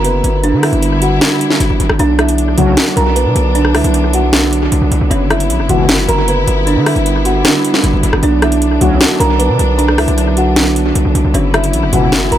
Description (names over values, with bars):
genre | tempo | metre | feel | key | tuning
hip hop, trap | 154 BPM | 4/4 | half-time | B harmonic minor | A4 = 442 Hz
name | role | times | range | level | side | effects
kalimba | melody | 0.0-12.4 s | B3 to A#5 | -15 LUFS | right 2 dB | low-pass filter, analog delay
warm symphonic string section | sustained chords | 0.0-12.4 s | D3 to E4 | -20 LUFS | equal | none
distorted 808-style bass | bass | 0.0-12.4 s | F#1 to D3 | -14 LUFS | equal | distortion
trap drum kit | drums | 0.0-12.4 s | hi-hat, rim click, snare drum | -16 LUFS | equal | overdrive, analog delay
mellow synth brass | stabs | 2.6-2.7, 5.7-5.9, 8.8-9.0, 11.9-12.1 s | C#2 to F#3 | -19 LUFS | left 2 dB | chorus, analog delay
room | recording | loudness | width
little or no reverb | echo-heavy mix | -10 LUFS | side -11 dB against mid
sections
0.0-2.0 A section; 2.0-12.4 A section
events
none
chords
0.4 G6; 2.0 Bmadd9; 5.1 F#7sus4; 6.7 G6; 8.2 Bmadd9; 11.3 F#7sus4